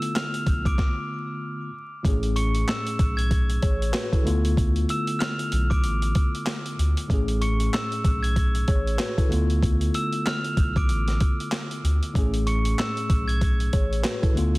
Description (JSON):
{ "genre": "hip hop, boom-bap hip-hop", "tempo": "95 BPM", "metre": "4/4", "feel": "swing 58% on 16ths", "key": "A major", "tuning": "A4 = 439 Hz", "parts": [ { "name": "glockenspiel with brass mallets", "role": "melody", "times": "0.0-14.2 s", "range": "C#6 to G#7", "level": "-31 LUFS", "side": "right 1 dB", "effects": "high-pass filter, low-pass filter, tape echo" }, { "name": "tine electric piano", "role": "accompaniment", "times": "0.0-14.6 s", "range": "A2 to C#5", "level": "-29 LUFS", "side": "left 1 dB", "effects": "medium stereo tremolo, high-pass filter, low-pass filter" }, { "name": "boom bap sampler-style drum kit", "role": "drums", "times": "0.0-14.6 s", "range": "handclaps, hi-hat, kick drum, snare drum", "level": "-24 LUFS", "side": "equal", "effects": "none" }, { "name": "soft dub sub bass", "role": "bass", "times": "0.5-14.6 s", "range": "A1 to D2", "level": "-24 LUFS", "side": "equal", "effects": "none" } ], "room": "little or no reverb", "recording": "dense, heavily limited modern master, vinyl crackle", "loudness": "-21 LUFS", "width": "side -22 dB against mid", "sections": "0.0-2.0 A section; 2.0-14.6 B section", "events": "stop 0.8-2.0", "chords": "0.0 Dm6; 2.0 Amaj7; 4.3 Dm6; 7.1 Amaj7; 9.3 Dm6; 12.2 Amaj7" }